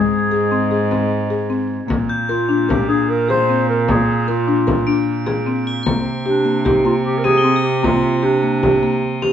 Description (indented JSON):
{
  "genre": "contemporary instrumental, chamber music in an uneven meter",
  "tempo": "152 BPM",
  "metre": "5/4",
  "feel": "straight",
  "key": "unclear",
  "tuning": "A4 = 440 Hz",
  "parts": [
    { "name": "dark clarinet", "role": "melody", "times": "0.0-9.0 s", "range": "D4 to C5", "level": "-20 LUFS", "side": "equal", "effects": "none" },
    { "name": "buzzing marimba with medium mallets", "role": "arpeggios", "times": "0.0-9.3 s", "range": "Ab3 to Bb4", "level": "-18 LUFS", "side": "left 3 dB", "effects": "none" },
    { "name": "rich cello", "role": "bass", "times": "0.0-9.3 s", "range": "Ab2 to C3", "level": "-21 LUFS", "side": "right 5 dB", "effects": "none" },
    { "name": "frame drum", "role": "percussion", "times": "0.1-9.3 s", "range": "none", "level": "-23 LUFS", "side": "left 2 dB", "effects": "none" },
    { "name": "crotales", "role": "texture", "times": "2.1-9.3 s", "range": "G6 to C8", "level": "-28 LUFS", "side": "left 2 dB", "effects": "none" }
  ],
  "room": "moderate studio reverb, RT60 0.7 s",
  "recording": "none",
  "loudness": "-15 LUFS",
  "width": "side -9 dB against mid",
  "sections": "0.0-1.9 A section; 1.9-9.3 B section",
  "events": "none",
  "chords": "0.0 Ab; 1.9 Bb; 5.9 Cm9"
}